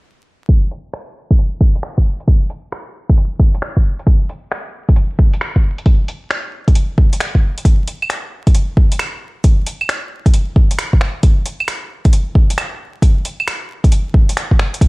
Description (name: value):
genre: future garage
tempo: 134 BPM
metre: 4/4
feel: swing 66% on 16ths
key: none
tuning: none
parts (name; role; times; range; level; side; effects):
- deep house drum kit; drums; 0.5-14.9 s; claves, finger snaps, hi-hat; -22 LUFS; right 1 dB; vintage 12-bit sampler grit, studio reverb
- electronic kick drum; drums; 0.5-14.9 s; none; -11 LUFS; equal; vintage 12-bit sampler grit, studio reverb
room: little or no reverb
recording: vinyl crackle, low-pass filter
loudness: -13 LUFS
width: side -25 dB against mid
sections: 0.5-7.7 A section; 7.7-14.9 B section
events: filter sweep 0.5-7.7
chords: none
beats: | 0.49 0.94 1.38 1.83 | 2.28 2.73 3.17 3.62 | 4.07 4.52 4.96 5.41 | 5.86 6.31 6.75 7.20 | 7.65 8.10 8.55 8.99 | 9.44 9.89 10.34 10.79 | 11.23 11.68 12.13 12.58 | 13.02 13.47 13.92 14.37 | 14.81